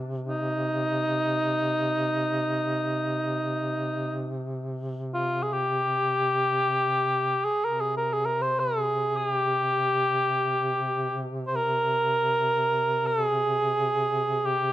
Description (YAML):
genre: caucasian folk, Caucasian lament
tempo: free time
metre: none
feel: none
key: C minor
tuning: A4 = 440 Hz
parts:
  - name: mellow duduk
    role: drone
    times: 0.0-14.7 s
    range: C3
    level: -32 LUFS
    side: equal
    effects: none
  - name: mellow cor anglais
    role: melody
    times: 0.3-14.7 s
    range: Eb4 to C5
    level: -24 LUFS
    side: equal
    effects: none
room: light reverb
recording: close, detailed microphones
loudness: -24 LUFS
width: side -13 dB against mid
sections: 0.0-14.7 A section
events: none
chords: none